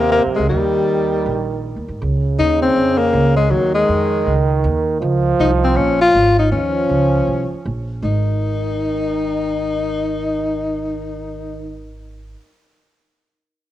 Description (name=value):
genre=jazz, small-group swing and bop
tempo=160 BPM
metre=4/4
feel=swing 64% on 8ths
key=Ab major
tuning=A4 = 439 Hz
part: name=warm tenor saxophone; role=melody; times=0.0-11.8 s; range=Gb3 to F4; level=-17 LUFS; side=left 3 dB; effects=cassette tape
part: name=dark trombone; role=second line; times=0.0-11.8 s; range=C3 to F3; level=-22 LUFS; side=right 5 dB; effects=cassette tape
part: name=upright bass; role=bass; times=0.0-12.3 s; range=Ab1 to Ab2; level=-21 LUFS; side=right 1 dB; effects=none
room=wet spring reverb, RT60 2.1 s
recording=home recording on cassette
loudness=-15 LUFS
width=side -13 dB against mid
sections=0.0-2.0 A section; 2.0-8.0 B section; 8.0-11.0 C section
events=none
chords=0.0 Ab7; 0.5 Eb; 2.0 Db; 6.5 Ebsus2; 8.0 Ab5